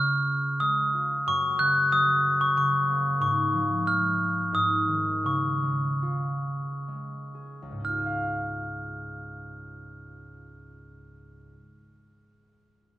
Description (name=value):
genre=children's music, lullaby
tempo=59-94 BPM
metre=3/4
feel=rubato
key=Db major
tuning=A4 = 445 Hz
part: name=glockenspiel with rubber mallets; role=melody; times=0.0-11.0 s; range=Db6 to Gb6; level=-25 LUFS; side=equal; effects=none
part: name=concert harp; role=accompaniment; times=0.0-11.6 s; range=Db2 to F5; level=-31 LUFS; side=equal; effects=none
room=moderate recital hall reverb, RT60 1.7 s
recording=minimal, uncompressed stereo recording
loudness=-23 LUFS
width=side -14 dB against mid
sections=0.0-7.8 A section; 7.8-13.0 B section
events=slowing down 3.2-7.8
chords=0.0 Db; 1.3 Gb; 3.2 Db/Ab; 4.5 Ab5; 5.2 Db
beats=0.62 | 1.27 1.92 2.57 | 3.21 3.86 4.53 | 5.25 6.02 6.88 | 7.84 8.86 9.86 | 10.85